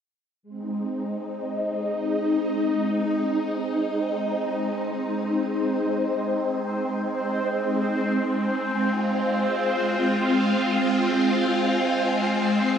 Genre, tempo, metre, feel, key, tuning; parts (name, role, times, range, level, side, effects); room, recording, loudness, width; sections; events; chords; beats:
ambient, sequencer-driven space music; free time; A4 = 440 Hz
phased string machine; sustained chords; 0.4-12.8 s; Ab3 to F4; -22 LUFS; equal; ensemble chorus, phaser, shimmer reverb
bubbling stepped-filter texture; texture; 4.3-12.8 s; C4 to C5; -32 LUFS; right 1 dB; chorus, built-in reverb, shimmer reverb
wet lush hall reverb, RT60 3.1 s; -22 LUFS; side -8 dB against mid
0.4-12.8 A section
fade-in on synth texture 0.4-12.8
0.4 Ab; 8.3 Fm
free time